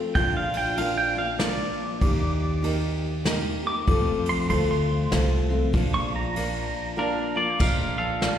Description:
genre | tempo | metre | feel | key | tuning
honky-tonk and classic country | 97 BPM | 3/4 | swing 62% on 8ths | Bb major | A4 = 440 Hz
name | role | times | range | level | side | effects
picked steel-string acoustic guitar | accompaniment | 0.0-8.4 s | F2 to G4 | -28 LUFS | left 4 dB | plate reverb, slapback echo
pedal steel guitar | second line | 0.2-7.6 s | D5 to D6 | -29 LUFS | right 2 dB | plate reverb, slapback echo
upright bass | bass | 0.2-8.4 s | Bb1 to F2 | -27 LUFS | right 1 dB | none
soft brush drum kit | drums | 0.2-8.4 s | crash cymbal, hi-hat, kick drum, ride cymbal, snare drum | -28 LUFS | equal | none
warm upright piano | accompaniment | 0.8-8.4 s | Bb3 to D5 | -32 LUFS | right 5 dB | plate reverb, slapback echo
twangy electric guitar | melody | 7.0-8.4 s | D4 to F5 | -26 LUFS | right 2 dB | slapback echo, tape echo
room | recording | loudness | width
light reverb | live gig heard through the venue's PA, recital hall reverb | -22 LUFS | side -9 dB against mid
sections
0.0-7.6 A section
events
pedal steel guitar solo 0.0-7.6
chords
0.1 Bb; 2.0 Eb; 3.9 F; 5.7 Bb

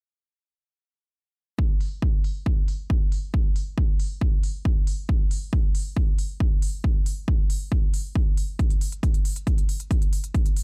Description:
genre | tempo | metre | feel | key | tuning
driving peak-time techno | 137 BPM | 4/4 | straight | none | none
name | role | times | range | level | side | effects
electronic kick drum | drums | 1.6-10.4 s | none | -24 LUFS | equal | overdrive
electronic hi-hat | drums | 1.8-10.6 s | none | -41 LUFS | equal | overdrive, low-pass filter on hats
room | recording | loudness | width
little or no reverb | none | -24 LUFS | mono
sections
1.6-10.6 A section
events
none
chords
none

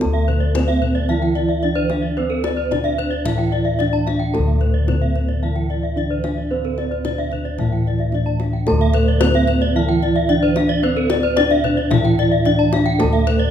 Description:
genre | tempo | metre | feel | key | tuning
Balinese gamelan | 111 BPM | 4/4 | straight | D slendro | A4 = 440 Hz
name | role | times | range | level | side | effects
gamelan-type bronze metallophone | melody | 0.0-13.5 s | C4-45c to A4+25c | -22 LUFS | right 1 dB | none
gamelan-type bronze metallophone | accompaniment | 0.0-13.5 s | E3+30c to C4-45c | -25 LUFS | right 5 dB | none
gamelan-type bronze metallophone | arpeggios | 0.0-13.4 s | C5-45c to A5+25c | -24 LUFS | left 7 dB | none
gamelan-type bossed gongs | bass | 0.0-13.5 s | D2 to C5-45c | -20 LUFS | left 1 dB | none
kendang | percussion | 0.0-13.4 s | none | -27 LUFS | left 4 dB | none
gamelan-type bronze metallophone | arpeggios | 0.1-13.5 s | A4+25c to A5+25c | -26 LUFS | right 6 dB | none
room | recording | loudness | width
wet recital hall reverb, RT60 1.8 s | minimal, uncompressed stereo recording | -16 LUFS | side -9 dB against mid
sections
0.0-13.5 A section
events
none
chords
none

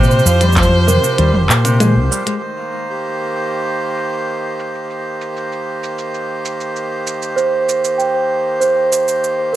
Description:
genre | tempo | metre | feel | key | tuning
folktronica | 97 BPM | 4/4 | straight | C minor | A4 = 440 Hz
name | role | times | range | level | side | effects
clear violin | melody | 0.0-1.8 s | C5 | -20 LUFS | equal | tape echo
celesta | second line | 0.0-2.4, 7.4-9.6 s | Bb4 to G5 | -17 LUFS | right 3 dB | ping-pong delay
accordion | sustained chords | 0.0-9.6 s | Eb3 to C5 | -21 LUFS | right 1 dB | none
nylon-string guitar | arpeggios | 0.0-2.4 s | C3 to Ab3 | -20 LUFS | left 1 dB | vintage 12-bit sampler grit, tape echo
fingered electric bass | bass | 0.0-2.1 s | F1 to Bb2 | -13 LUFS | left 1 dB | none
minimal click drum kit | drums | 0.0-9.4 s | handclaps, hi-hat, shaker, toms | -19 LUFS | right 1 dB | low-pass filter on hats, low-pass filter on perc, low-pass filter on toms, low-pass filter on snare
electronic kick drum | drums | 0.6-0.7 s | none | -16 LUFS | left 1 dB | none
room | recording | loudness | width
moderate plate reverb, RT60 2.2 s | none | -14 LUFS | side -13 dB against mid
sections
0.0-2.4 A section; 2.4-9.6 B section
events
kick drops out 1.2-2.4; filter sweep on drum 2.4-9.6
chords
0.0 Fsus2; 2.4 Cm7

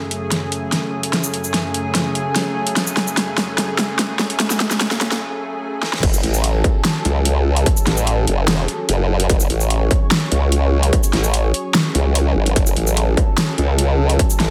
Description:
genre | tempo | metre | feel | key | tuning
heavy wobble dubstep | 147 BPM | 4/4 | half-time | F# minor | A4 = 440 Hz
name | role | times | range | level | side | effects
lush unison pad | sustained chords | 0.0-14.5 s | F#2 to C#5 | -27 LUFS | equal | chorus, sidechain pumping
big-room dance drum kit | drums | 0.1-14.5 s | crash cymbal, hi-hat, shaker, snare drum | -22 LUFS | equal | overdrive, small room reverb
formant-sweep wobble bass | bass | 6.0-14.5 s | F#1 to C#2 | -19 LUFS | equal | chorus, overdrive
electronic kick drum | drums | 6.0-14.3 s | none | -19 LUFS | equal | distortion, small room reverb
room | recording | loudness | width
light reverb | dense, heavily limited modern master, high-pass filter | -18 LUFS | mono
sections
0.0-6.0 A section; 6.0-14.5 B section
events
build-up 0.0-6.0; drum fill 0.0-5.2, 5.8; break 5.2-6.0; drop 6.0-14.5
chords
0.0 F#madd9

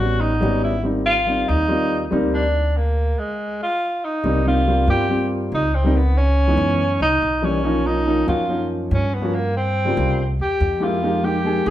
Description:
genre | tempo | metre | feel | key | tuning
Afro-Cuban jazz | 142 BPM | 4/4 | straight | unclear | A4 = 440 Hz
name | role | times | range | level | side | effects
breathy tenor saxophone | melody | 0.0-11.7 s | Ab3 to G4 | -21 LUFS | equal | none
dark grand piano | accompaniment | 0.0-11.7 s | Db3 to Ab4 | -22 LUFS | equal | none
upright bass | bass | 0.0-11.7 s | Ab1 to G2 | -21 LUFS | equal | none
room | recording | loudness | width
wet large studio reverb, RT60 0.9 s | band playing live in one room | -17 LUFS | side -13 dB against mid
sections
0.0-4.2 A section; 4.2-11.7 B section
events
stop 2.5-4.2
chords
0.0 A13; 0.8 Abmaj7; 2.5 Bb7/D; 3.4 N.C.; 4.2 Cm7; 5.9 Dbm7; 6.8 Gb7b9; 7.6 Bmaj9#11; 9.3 Gm7b5; 10.2 C7b13; 11.0 Fm11

